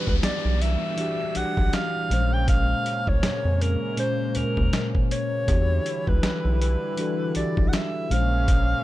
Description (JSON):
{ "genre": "contemporary R&B", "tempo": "80 BPM", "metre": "4/4", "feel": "swing 58% on 16ths", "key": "unclear", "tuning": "A4 = 443 Hz", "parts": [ { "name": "warm alto saxophone", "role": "melody", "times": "0.0-8.8 s", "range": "A#4 to G5", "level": "-28 LUFS", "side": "equal", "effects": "ping-pong delay" }, { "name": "mellow tine electric piano", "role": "accompaniment", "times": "0.0-8.8 s", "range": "A#2 to B#4", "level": "-29 LUFS", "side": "left 2 dB", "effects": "slow stereo tremolo" }, { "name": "warm analog pad", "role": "sustained chords", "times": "0.0-8.8 s", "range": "C#3 to E4", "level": "-33 LUFS", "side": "right 1 dB", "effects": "chorus" }, { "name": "downlifter", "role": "sound effects", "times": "0.0-5.5 s", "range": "none", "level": "-37 LUFS", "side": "equal", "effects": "none" }, { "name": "rubbery square bass", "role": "bass", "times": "0.1-8.7 s", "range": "A#1 to E#2", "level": "-24 LUFS", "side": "equal", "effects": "none" }, { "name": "dusty soul sampler-style drum kit", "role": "drums", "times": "0.1-8.7 s", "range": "hi-hat, kick drum, snare drum", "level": "-25 LUFS", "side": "equal", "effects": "none" } ], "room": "digital ambience", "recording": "none", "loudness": "-21 LUFS", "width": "side -15 dB against mid", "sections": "0.0-8.8 A section", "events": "none", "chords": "0.0 Em9; 2.1 A#m9; 5.5 Em9; 8.1 A#m9", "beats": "0.23 0.98 1.73 | 2.48 3.23 3.98 4.73 | 5.48 6.23 6.98 7.73 | 8.48" }